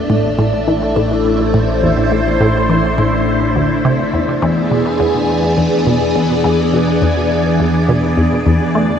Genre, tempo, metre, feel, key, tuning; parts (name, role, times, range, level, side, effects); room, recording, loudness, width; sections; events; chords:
ambient, sequencer-driven space music; 104 BPM; 4/4; straight; A4 = 441 Hz
phased string machine; sustained chords; 0.0-9.0 s; A2 to D5; -15 LUFS; equal; ensemble chorus, phaser
analog drone; bass; 0.1-9.0 s; A1 to E2; -22 LUFS; equal; chorus
wind-like tuned noise texture; texture; 0.0-9.0 s; D4 to D5; -22 LUFS; left 3 dB; built-in reverb
resonant blip pluck; riff; 0.1-8.9 s; D2 to A3; -17 LUFS; equal; chorus, phaser, tape echo
wet huge ambient reverb, RT60 8.3 s; -12 LUFS; side -8 dB against mid
0.0-9.0 A section
0.0 Am; 4.1 E7